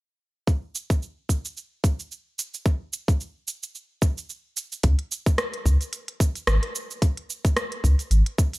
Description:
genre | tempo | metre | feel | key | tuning
organic downtempo | 110 BPM | 4/4 | swing 56% on 16ths | unclear | A4 = 440 Hz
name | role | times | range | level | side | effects
electronic kick drum | drums | 0.5-8.5 s | none | -21 LUFS | equal | small room ambience
organic electronic drum kit | drums | 0.5-8.6 s | hi-hat, rim click, shaker | -28 LUFS | right 1 dB | small room ambience
warm sub bass | bass | 4.8-8.2 s | G#1 to C#2 | -18 LUFS | equal | none
room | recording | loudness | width
digital ambience | none | -23 LUFS | side -20 dB against mid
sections
0.5-4.8 A section; 4.8-8.6 B section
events
break 4.3-4.8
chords
none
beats
| 0.47 1.02 1.56 2.11 | 2.65 3.20 3.75 4.29 | 4.84 5.38 5.93 6.47 | 7.02 7.56 8.11

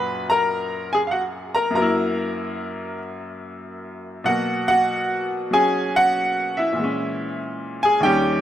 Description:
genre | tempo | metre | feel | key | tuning
solo jazz | 95 BPM | 4/4 | swing 68% on 8ths | unclear | A4 = 439 Hz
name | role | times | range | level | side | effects
bright upright piano | solo | 0.0-8.4 s | D#2 to B5 | -20 LUFS | equal | none
room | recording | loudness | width
moderate lush hall reverb, RT60 2.8 s | rough home demo mix | -19 LUFS | side -11 dB against mid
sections
0.0-8.4 A section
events
none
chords
0.0 F#; 1.7 F#7; 4.3 B5; 6.8 A#m7b5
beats
0.49 1.12 | 1.75 2.38 3.00 3.63 | 4.26 4.89 5.52 6.15 | 6.78 7.41 8.03

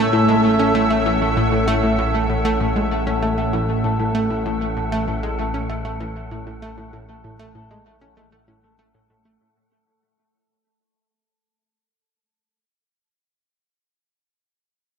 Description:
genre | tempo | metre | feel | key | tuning
ambient, sequencer-driven space music | 97 BPM | 4/4 | straight | unclear | A4 = 442 Hz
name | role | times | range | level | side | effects
lush unison pad | sustained chords | 0.0-9.4 s | A2 to E5 | -21 LUFS | equal | chorus
concert harp | arpeggios | 0.0-12.6 s | A3 to E5 | -25 LUFS | left 3 dB | auto-pan, tape echo
analog pluck | riff | 0.0-9.3 s | A2 to C#4 | -24 LUFS | right 1 dB | chorus, tape echo
fat analog bass | bass | 0.0-9.4 s | A1 | -27 LUFS | equal | none
wind-like tuned noise texture | texture | 0.0-9.4 s | A4 to F#5 | -28 LUFS | equal | built-in reverb
room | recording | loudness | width
wet echo chamber reverb, RT60 2.2 s | echo-heavy mix | -17 LUFS | side -6 dB against mid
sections
0.0-9.4 A section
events
fade-out 0.0-9.4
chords
0.0 A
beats
0.13 0.75 1.37 | 1.99 2.61 3.23 3.84 | 4.46 5.08 5.70 6.32 | 6.94 7.55 8.17 8.79

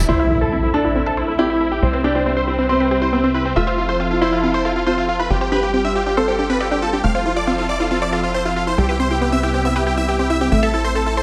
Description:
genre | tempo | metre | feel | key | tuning
trance | 138 BPM | 4/4 | straight | A minor | A4 = 440 Hz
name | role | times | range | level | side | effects
big supersaw lead | melody | 0.0-11.2 s | C4 to F5 | -23 LUFS | equal | low-pass filter, delay
analog string pad | sustained chords | 0.0-11.2 s | C3 to E5 | -28 LUFS | equal | ensemble chorus
unison pluck | arpeggios | 0.0-11.2 s | G3 to E5 | -26 LUFS | equal | delay
tight sequencer bass | bass | 0.0-11.2 s | F1 to C2 | -26 LUFS | equal | none
clear concert grand piano | second line | 0.1-7.0 s | C4 to A4 | -23 LUFS | equal | digital delay
impact | sound effects | 0.1-1.8 s | none | -26 LUFS | equal | none
room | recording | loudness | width
moderate recital hall reverb, RT60 1.4 s | none | -18 LUFS | mono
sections
0.1-11.2 A section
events
impact 0.1-1.8; filter sweep on supersaw synth 0.1-11.2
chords
0.1 Am; 1.8 Cmaj7; 3.6 Fmaj7; 5.3 G7sus4; 7.0 Fmaj7; 8.8 Cmaj7; 10.5 Am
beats
| 0.09 0.52 0.96 1.39 | 1.82 2.26 2.69 3.13 | 3.56 4.00 4.43 4.87 | 5.30 5.74 6.17 6.61 | 7.04 7.48 7.91 8.35 | 8.78 9.22 9.65 10.09 | 10.52 10.96

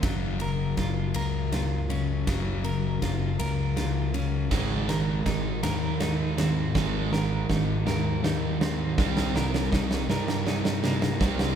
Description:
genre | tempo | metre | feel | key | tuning
post-rock | 54 BPM (dotted quarters) | 6/8 | straight | Ab major | A4 = 441 Hz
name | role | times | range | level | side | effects
clean electric guitar | arpeggios | 0.0-11.6 s | C3 to Bb4 | -34 LUFS | right 2 dB | harmonic tremolo
thick fuzz guitar | riff | 0.0-11.6 s | Gb2 to C4 | -29 LUFS | left 5 dB | distortion
growling fingered electric bass | bass | 0.0-11.6 s | Gb1 to G2 | -31 LUFS | right 1 dB | overdrive
huge arena drum kit | drums | 0.0-11.6 s | crash cymbal, kick drum, ride cymbal, snare drum | -30 LUFS | right 1 dB | none
thick fuzz guitar | riff | 4.5-11.6 s | Ab2 to C4 | -31 LUFS | right 8 dB | distortion
room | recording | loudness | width
wet church reverb, RT60 3.2 s | recorded in a church or concert hall | -24 LUFS | side -8 dB against mid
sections
0.0-11.6 A section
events
build-up 0.0-11.6; drum fill 0.0-11.6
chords
0.0 Gbmaj7; 4.5 Abadd9; 9.0 Cm7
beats
| 0.03 1.15 | 2.27 3.39 | 4.51 5.63 | 6.75 7.86 | 8.98 10.09 | 11.21

